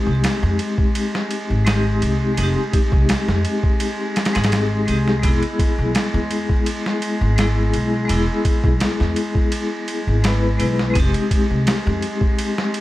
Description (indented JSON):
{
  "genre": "trip hop",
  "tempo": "84 BPM",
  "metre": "4/4",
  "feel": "straight",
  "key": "F minor",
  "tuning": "A4 = 444 Hz",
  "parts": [
    { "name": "vibraphone with medium hard mallets", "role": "accompaniment", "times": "0.0-12.8 s", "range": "Ab3 to B4", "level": "-22 LUFS", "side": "left 2 dB", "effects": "tremolo, tape echo" },
    { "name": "rich chamber string section", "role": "sustained chords", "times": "0.0-12.8 s", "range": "Ab3", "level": "-28 LUFS", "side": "equal", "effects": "none" },
    { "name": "upright bass", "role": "bass", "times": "0.1-12.0 s", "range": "E1 to F2", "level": "-20 LUFS", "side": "equal", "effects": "tube saturation" },
    { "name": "boom bap sampler-style drum kit", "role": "drums", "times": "0.2-12.8 s", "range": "kick drum, ride cymbal, snare drum", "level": "-21 LUFS", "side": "equal", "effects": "none" }
  ],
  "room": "light reverb, studio reverb",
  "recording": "vinyl crackle",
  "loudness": "-17 LUFS",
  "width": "side -16 dB against mid",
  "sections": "0.0-12.8 A section",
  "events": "none",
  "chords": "0.0 Fm7 (rootless); 5.2 E; 10.9 Fm7"
}